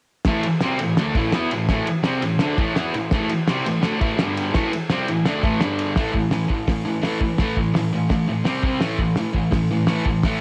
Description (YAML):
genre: garage rock duo or trio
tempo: 168 BPM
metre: 4/4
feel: straight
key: A minor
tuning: A4 = 440 Hz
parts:
  - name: cloth-damped thuddy drum kit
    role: drums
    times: 0.2-10.3 s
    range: hi-hat, kick drum, ride cymbal, snare drum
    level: -26 LUFS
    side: equal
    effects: cassette tape
  - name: fuzz guitar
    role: riff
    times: 0.3-10.4 s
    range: G2 to E4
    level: -23 LUFS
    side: equal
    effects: distortion, cassette tape
room: small room ambience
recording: home recording on cassette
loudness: -21 LUFS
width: mono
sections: 0.3-6.0 A section; 6.0-10.4 B section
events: none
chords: 0.3 Am; 4.2 G5; 4.5 Am; 5.6 G5; 6.0 A5; 8.5 C5; 8.8 A5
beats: | 0.26 0.62 0.97 1.33 | 1.69 2.04 2.40 2.76 | 3.11 3.47 3.83 4.18 | 4.54 4.89 5.25 5.61 | 5.96 6.32 6.68 7.04 | 7.39 7.75 8.11 8.46 | 8.82 9.18 9.54 9.89 | 10.25